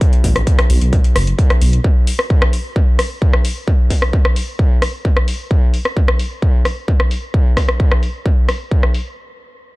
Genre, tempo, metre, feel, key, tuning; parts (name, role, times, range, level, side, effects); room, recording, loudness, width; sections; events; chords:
driving peak-time techno; 131 BPM; 4/4; straight; A4 = 440 Hz
electronic kick drum; drums; 0.0-8.8 s; -13 LUFS; equal; distortion
techno drum kit; drums; 0.0-9.0 s; hi-hat, rim click; -20 LUFS; left 1 dB; low-pass filter on hats, low-pass filter on snare
warbly tape-like pad; texture; 0.0-1.8 s; B3 to B5; -38 LUFS; equal
detuned saw bass; bass; 0.2-1.8 s; F#1 to B1; -14 LUFS; equal; sidechain pumping
digital ambience; dark, warm production; -13 LUFS; side -22 dB against mid
0.0-9.2 A section
0.0 B5